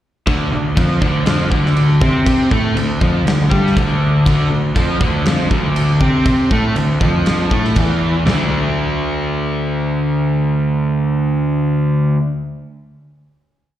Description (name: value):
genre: hard rock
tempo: 120 BPM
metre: 4/4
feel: straight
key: D minor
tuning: A4 = 440 Hz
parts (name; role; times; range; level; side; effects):
- crunchy overdriven guitar; riff; 0.3-12.2 s; D3 to D4; -17 LUFS; equal; slapback echo
- fuzz picked electric bass; bass; 0.3-12.2 s; D2 to C3; -18 LUFS; equal; overdrive
- big rock drum kit; drums; 0.3-8.4 s; crash cymbal, kick drum, snare drum, toms; -18 LUFS; equal; none
room: small room ambience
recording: live gig heard through the venue's PA, recital hall reverb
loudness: -13 LUFS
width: side -12 dB against mid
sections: 0.3-8.3 riff; 8.3-12.3 final chord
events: none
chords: 0.3 Dm; 8.3 D5